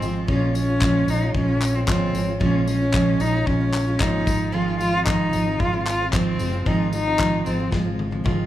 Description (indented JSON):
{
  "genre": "acoustic pop",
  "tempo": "113 BPM",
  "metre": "4/4",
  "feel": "straight",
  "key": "Bb minor",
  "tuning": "A4 = 440 Hz",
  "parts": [
    { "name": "warm cello", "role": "melody", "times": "0.0-8.3 s", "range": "Ab3 to F4", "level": "-24 LUFS", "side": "left 1 dB", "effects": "none" },
    { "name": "picked steel-string acoustic guitar", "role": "accompaniment", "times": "0.0-8.5 s", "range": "Ab2 to F4", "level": "-24 LUFS", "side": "right 2 dB", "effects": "none" },
    { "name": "mellow fretless electric bass", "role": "bass", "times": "0.0-8.5 s", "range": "Gb1 to Bb1", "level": "-26 LUFS", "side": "equal", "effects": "none" },
    { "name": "modern studio drum kit", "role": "drums", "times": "0.0-8.4 s", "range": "handclaps, kick drum, snare drum, tambourine, toms", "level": "-26 LUFS", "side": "left 2 dB", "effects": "none" }
  ],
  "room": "moderate recital hall reverb, RT60 1.4 s",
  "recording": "recorded in a church or concert hall",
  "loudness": "-19 LUFS",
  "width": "side -13 dB against mid",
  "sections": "0.0-8.5 A section",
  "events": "drum fill 7.7-8.5",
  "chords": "0.3 Bbm7; 4.3 Fm7"
}